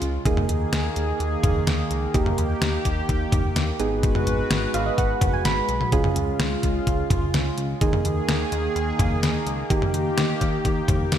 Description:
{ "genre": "synth-pop", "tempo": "127 BPM", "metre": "4/4", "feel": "straight", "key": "unclear", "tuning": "A4 = 437 Hz", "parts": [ { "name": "soft electric-piano-like synth keys", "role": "accompaniment", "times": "0.0-11.2 s", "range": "Bb3 to Cb6", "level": "-27 LUFS", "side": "right 5 dB", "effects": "chorus" }, { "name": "chorused pulse-width pad", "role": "sustained chords", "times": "0.0-11.2 s", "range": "Db3 to Cb5", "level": "-28 LUFS", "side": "left 2 dB", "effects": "none" }, { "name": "chorused synth bass", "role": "bass", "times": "0.0-11.2 s", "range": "Ab1 to Eb2", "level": "-28 LUFS", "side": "left 1 dB", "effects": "none" }, { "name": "detuned 8-bit digital drum machine", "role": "drums", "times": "0.0-11.2 s", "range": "cowbell, hi-hat, kick drum, snare drum, toms", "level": "-24 LUFS", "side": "left 1 dB", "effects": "overdrive" } ], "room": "moderate lush hall reverb, RT60 1.9 s", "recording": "bright 1980s-style digital production", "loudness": "-20 LUFS", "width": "side -10 dB against mid", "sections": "0.0-11.2 A section", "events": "synth keys fill 4.5-5.9", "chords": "0.3 Ebsus4; 2.1 Eb; 3.8 Abm7; 5.9 Db; 7.8 Ebsus4; 9.7 Eb", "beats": "| 0.25 0.73 1.20 1.67 | 2.14 2.62 3.09 3.56 | 4.03 4.51 4.98 5.45 | 5.92 6.40 6.87 7.34 | 7.81 8.29 8.76 9.23 | 9.70 10.18 10.65 11.12" }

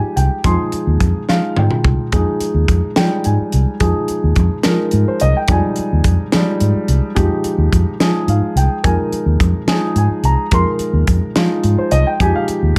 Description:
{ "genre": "electric jazz fusion", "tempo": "71 BPM (dotted quarters)", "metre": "6/8", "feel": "straight", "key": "F minor", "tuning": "A4 = 440 Hz", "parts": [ { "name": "dark concert grand piano", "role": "accompaniment", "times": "0.0-12.8 s", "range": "F3 to C6", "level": "-21 LUFS", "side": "equal", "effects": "plate reverb" }, { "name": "fingered electric bass", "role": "bass", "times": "0.0-12.8 s", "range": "C2 to F3", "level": "-18 LUFS", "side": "equal", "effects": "none" }, { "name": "crisp fusion drum kit", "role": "drums", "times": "0.2-12.8 s", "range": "hi-hat, kick drum, snare drum, toms", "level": "-22 LUFS", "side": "equal", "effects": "none" } ], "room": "light reverb", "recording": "none", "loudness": "-16 LUFS", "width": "mono", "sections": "0.0-12.8 A section", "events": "drum fill 1.3-2.1", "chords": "0.0 Fm9", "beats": "| 0.44 1.28 | 2.12 2.96 | 3.80 4.64 | 5.48 6.32 | 7.16 8.00 | 8.84 9.68 | 10.52 11.36 | 12.20" }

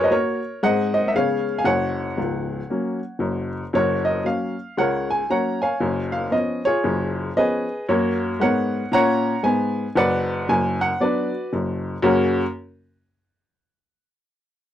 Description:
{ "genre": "jazz, stride piano", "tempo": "116 BPM", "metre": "4/4", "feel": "swing 61% on 8ths", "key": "F# major", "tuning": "A4 = 440 Hz", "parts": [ { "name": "clear upright piano", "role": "solo", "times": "0.0-12.4 s", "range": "C#1 to A#5", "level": "-19 LUFS", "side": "equal", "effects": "none" } ], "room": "light reverb", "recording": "dry, close 1970s-style studio recording", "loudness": "-20 LUFS", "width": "side -11 dB against mid", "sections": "0.0-3.7 A section; 3.7-12.0 B section; 12.0-14.1 C section", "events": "none", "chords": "0.0 F#; 0.6 G#7; 1.1 C#7; 1.7 F#; 5.8 C#7/F#; 7.9 F#; 10.0 Bm/F#; 12.0 F#", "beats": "0.10 0.62 1.14 | 1.66 2.17 2.69 3.21 | 3.73 4.25 4.77 5.29 | 5.80 6.32 6.84 7.36 | 7.88 8.40 8.92 9.44 | 9.96 10.48 11.00 11.52 | 12.04" }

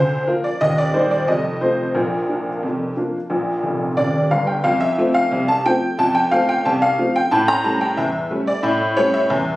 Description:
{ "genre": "ragtime piano", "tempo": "90 BPM", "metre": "2/4", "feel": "straight", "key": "Bb major, F major from 4.7 s", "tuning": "A4 = 440 Hz", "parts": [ { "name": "honky-tonk upright piano", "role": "solo", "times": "0.0-9.6 s", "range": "Eb1 to Bb5", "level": "-16 LUFS", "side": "equal", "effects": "none" } ], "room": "moderate club ambience, RT60 0.5 s", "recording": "recorded on a phone in the room, studio reverb", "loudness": "-16 LUFS", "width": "side -17 dB against mid", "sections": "0.0-4.7 A section; 4.7-9.6 B section", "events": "honky-tonk piano fill 3.6-4.7", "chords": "0.0 Bb/D; 0.6 Eb; 1.3 F7; 2.0 Bb; 4.7 F; 7.3 A7", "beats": "| 0.61 1.28 | 1.96 2.63 | 3.31 3.98 | 4.65 5.32 | 5.98 6.65 | 7.31 7.97 | 8.63 9.30" }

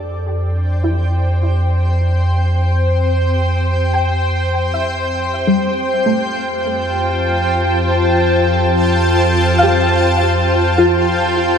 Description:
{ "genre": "ambient", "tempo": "free time", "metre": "none", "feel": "none", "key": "F major", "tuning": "A4 = 440 Hz", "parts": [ { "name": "granular cloud pad", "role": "sustained chords", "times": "0.0-11.6 s", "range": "F4 to A5", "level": "-16 LUFS", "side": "left 1 dB", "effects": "built-in reverb" }, { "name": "soft round pluck", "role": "arpeggios", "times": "0.0-11.6 s", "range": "G3 to G5", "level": "-20 LUFS", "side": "left 1 dB", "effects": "ensemble chorus, tape echo" }, { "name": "deep rumbling drone", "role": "bass", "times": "0.0-11.6 s", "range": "F2", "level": "-17 LUFS", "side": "equal", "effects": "built-in reverb" } ], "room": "wet lush hall reverb, RT60 2.9 s", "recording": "cassette tape", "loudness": "-13 LUFS", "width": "side -7 dB against mid", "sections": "0.0-11.6 A section", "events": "fade-in on ambient pad 0.0-11.6; fade-in on synth pluck 0.0-11.6", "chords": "0.0 C/F; 5.6 Fadd9", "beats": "free time" }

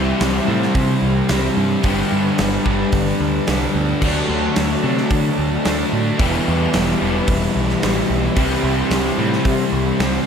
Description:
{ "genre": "rock, shoegaze and dream pop", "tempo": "110 BPM", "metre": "4/4", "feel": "straight", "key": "unclear", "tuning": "A4 = 442 Hz", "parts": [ { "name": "glassy FM pad", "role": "sustained chords", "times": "0.0-10.3 s", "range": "F#4 to C6", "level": "-28 LUFS", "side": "left 3 dB", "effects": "ensemble chorus, built-in reverb" }, { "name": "distorted electric guitar", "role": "riff", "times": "0.0-10.3 s", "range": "E2 to D4", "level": "-23 LUFS", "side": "equal", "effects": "distortion" }, { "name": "overdriven semi-hollow guitar", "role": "riff", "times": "0.0-10.3 s", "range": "E2 to G4", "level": "-22 LUFS", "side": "left 9 dB", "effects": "ensemble chorus" }, { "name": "raw garage guitar", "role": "riff", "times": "0.0-10.3 s", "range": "G2 to E4", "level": "-23 LUFS", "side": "right 9 dB", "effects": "overdrive, reverse reverb" }, { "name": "growling picked electric bass", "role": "bass", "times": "0.0-10.2 s", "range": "E1 to D3", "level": "-22 LUFS", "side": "equal", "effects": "overdrive" }, { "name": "big rock drum kit", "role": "drums", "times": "0.2-10.1 s", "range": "crash cymbal, hi-hat, kick drum, snare drum", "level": "-23 LUFS", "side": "right 1 dB", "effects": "none" } ], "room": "light reverb, small room ambience", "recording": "none", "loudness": "-16 LUFS", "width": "side -7 dB against mid", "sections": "0.0-10.3 A section", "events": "none", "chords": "0.0 C; 1.8 Gadd9; 4.0 D; 6.2 Em; 8.4 C", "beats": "0.21 0.75 1.30 | 1.84 2.38 2.93 3.47 | 4.02 4.56 5.10 5.65 | 6.19 6.73 7.28 7.82 | 8.36 8.91 9.45 9.99" }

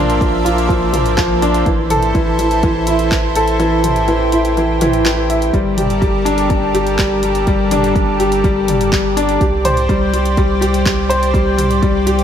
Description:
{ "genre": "piano and strings electronica", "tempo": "124 BPM", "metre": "4/4", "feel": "straight", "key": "G dorian", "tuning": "A4 = 440 Hz", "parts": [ { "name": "lush unison pad", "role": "sustained chords", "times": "0.0-12.2 s", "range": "G3 to E5", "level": "-21 LUFS", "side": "right 1 dB", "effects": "chorus, sidechain pumping" }, { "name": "warm upright piano", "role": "riff", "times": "0.0-12.2 s", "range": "E3 to E5", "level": "-15 LUFS", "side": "left 1 dB", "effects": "digital delay" }, { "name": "round analog bass", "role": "bass", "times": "0.0-12.2 s", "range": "G1 to C2", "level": "-20 LUFS", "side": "equal", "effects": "sidechain pumping" }, { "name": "deep house drum kit", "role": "drums", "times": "0.1-12.2 s", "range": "handclaps, hi-hat, toms", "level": "-23 LUFS", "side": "right 1 dB", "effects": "small room reverb" }, { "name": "electronic kick drum", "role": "drums", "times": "0.2-11.9 s", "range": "none", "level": "-18 LUFS", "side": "equal", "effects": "small room reverb" } ], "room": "light reverb", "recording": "none", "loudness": "-12 LUFS", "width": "side -9 dB against mid", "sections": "0.0-12.2 A section", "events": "kick drops out 3.6-5.5", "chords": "0.0 Bbadd9; 1.7 Am; 5.5 Gmadd9; 9.4 Csus2", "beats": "0.21 0.70 1.18 | 1.67 2.15 2.63 3.12 | 3.60 4.08 4.57 5.05 | 5.54 6.02 6.50 6.99 | 7.47 7.96 8.44 8.92 | 9.41 9.89 10.37 10.86 | 11.34 11.83" }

